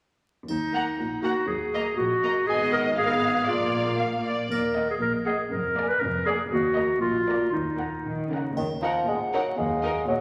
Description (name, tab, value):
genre	cinematic, playful, whimsical film cue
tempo	119 BPM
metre	2/4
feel	straight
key	Eb minor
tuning	A4 = 442 Hz
part	clear clarinet	second line	0.5-8.3 s	Eb4 to Cb5	-28 LUFS	equal	none
part	dark studio cello section	bass	0.5-10.2 s	Eb2 to Eb3	-35 LUFS	equal	none
part	rich studio double bass section	bass	0.5-10.0 s	F1 to Eb2	-41 LUFS	equal	none
part	triangle	percussion	0.5-1.4, 4.5-5.5, 8.6-9.5 s	none	-51 LUFS	equal	none
part	rich studio violin section	melody	0.7-9.9 s	Eb5 to Bb5	-41 LUFS	equal	none
part	rich studio violin section	second line	0.7-9.9 s	Bb4 to Gb5	-34 LUFS	equal	none
part	warm studio viola section	accompaniment	0.7-9.9 s	Bb3 to Eb4	-37 LUFS	equal	none
part	warm bassoon	accompaniment	8.6-10.2 s	Eb3 to Ab3	-28 LUFS	equal	none
part	mellow hollow silver concert flute	second line	9.1-10.1 s	Eb5 to Gb5	-33 LUFS	equal	none
room	wet scoring stage reverb, RT60 1.9 s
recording	vinyl crackle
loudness	-26 LUFS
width	mono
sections	0.5-8.6 A section; 8.6-10.2 A section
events	none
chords	0.5 Ebm; 2.5 Abm; 3.5 Bb; 4.5 Ebm; 5.5 Bb7/F; 6.5 Ebm; 7.0 Bb; 7.5 Ebm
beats	| 0.49 0.99 | 1.49 1.99 | 2.49 2.99 | 3.50 4.01 | 4.51 5.02 | 5.52 6.02 | 6.52 7.02 | 7.54 8.06 | 8.57 9.08 | 9.58 10.09